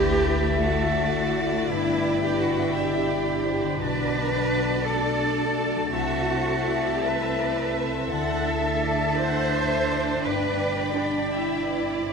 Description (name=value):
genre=cinematic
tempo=56 BPM (dotted quarters)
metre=6/8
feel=rubato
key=unclear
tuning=A4 = 444 Hz
part: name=warm studio violin section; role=melody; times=0.0-12.1 s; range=A4 to F#5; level=-35 LUFS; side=left 4 dB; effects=none
part: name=clear oboe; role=second line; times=0.0-12.1 s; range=A5 to B5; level=-34 LUFS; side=right 3 dB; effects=none
part: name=clear studio violin section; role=second line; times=0.0-12.1 s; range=D5 to A5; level=-33 LUFS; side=left 2 dB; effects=none
part: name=warm clarinet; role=second line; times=0.0-12.1 s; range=D5 to E5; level=-33 LUFS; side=equal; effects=none
part: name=warm studio viola section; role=accompaniment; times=0.0-12.1 s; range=A3 to D5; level=-31 LUFS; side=right 4 dB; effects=none
part: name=mellow French horn section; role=sustained chords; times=0.0-12.1 s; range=B2 to E4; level=-31 LUFS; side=left 5 dB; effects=none
part: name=concert harp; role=arpeggios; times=0.0-12.1 s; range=G2 to B5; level=-31 LUFS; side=left 7 dB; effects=none
part: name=rich studio cello section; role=bass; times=0.0-12.1 s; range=D4 to C5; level=-28 LUFS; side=right 2 dB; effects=none
part: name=rich studio double bass section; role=bass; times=0.0-12.1 s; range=G1 to D2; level=-32 LUFS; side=right 2 dB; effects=none
room=wet scoring stage reverb, RT60 1.9 s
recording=minimal, uncompressed stereo recording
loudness=-22 LUFS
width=side -5 dB against mid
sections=0.0-12.1 A section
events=none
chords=0.0 Dsus2; 1.7 G6; 3.8 Bm7; 5.9 Amadd9/C; 8.1 Dsus2; 10.2 G6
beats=0.62 | 1.70 2.76 | 3.81 4.86 | 5.93 7.05 | 8.12 9.18 | 10.25 11.32